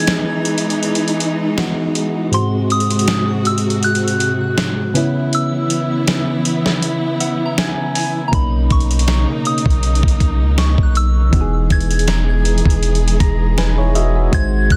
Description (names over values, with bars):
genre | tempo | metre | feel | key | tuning
contemporary R&B | 80 BPM | 4/4 | swing 54% on 16ths | unclear | A4 = 441 Hz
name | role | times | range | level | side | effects
soft synth bell | melody | 0.0-14.8 s | A#5 to G#6 | -26 LUFS | equal | chorus, digital delay
soft electric-piano-like synth keys | accompaniment | 0.0-14.8 s | G#2 to A#5 | -23 LUFS | equal | chorus
warm symphonic string section | sustained chords | 0.0-14.8 s | B#2 to G#4 | -24 LUFS | equal | none
dusty soul sampler-style drum kit | drums | 0.1-14.8 s | hi-hat, kick drum, snare drum | -21 LUFS | equal | none
soft synth bell | texture | 7.2-12.8 s | F#5 to F#6 | -36 LUFS | equal | chorus, phaser, digital delay
long sustained 808-style bass | bass | 8.3-14.8 s | E1 to C#2 | -18 LUFS | equal | none
room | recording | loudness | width
light reverb | dense, heavily limited modern master | -16 LUFS | mono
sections
0.0-14.8 A section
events
break 0.0-8.3; synth keys fill 6.8-8.3, 12.8-14.3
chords
0.0 Emaj7; 2.3 G#7; 5.0 C#m7; 8.3 Bmaj9; 11.3 Emaj7